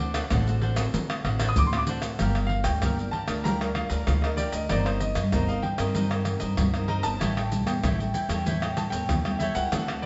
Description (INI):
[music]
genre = samba and choro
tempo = 96 BPM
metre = 4/4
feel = straight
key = G minor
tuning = A4 = 440 Hz
[part]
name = clear concert grand piano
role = melody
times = 0.0-10.1 s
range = C5 to Eb6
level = -34 LUFS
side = equal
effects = none
[part]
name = cavaquinho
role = accompaniment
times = 0.0-10.1 s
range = D4 to G5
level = -38 LUFS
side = equal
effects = none
[part]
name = nylon-string guitar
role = accompaniment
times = 0.0-10.1 s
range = A2 to Bb4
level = -35 LUFS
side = equal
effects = none
[part]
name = upright bass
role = bass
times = 0.0-10.1 s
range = G1 to D3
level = -31 LUFS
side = equal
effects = none
[part]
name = maracas, surdo, pandeiro and tamborim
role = percussion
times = 0.1-10.1 s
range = none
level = -31 LUFS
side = equal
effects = none
[sound]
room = wet stone room reverb, RT60 1.2 s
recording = band playing live in one room, nothing above 7.8 kHz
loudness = -26 LUFS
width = mono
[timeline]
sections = 0.0-2.2 A section; 2.2-10.1 B section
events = none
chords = 0.0 D7; 2.2 Gm7; 4.7 Cm7/G; 7.2 A7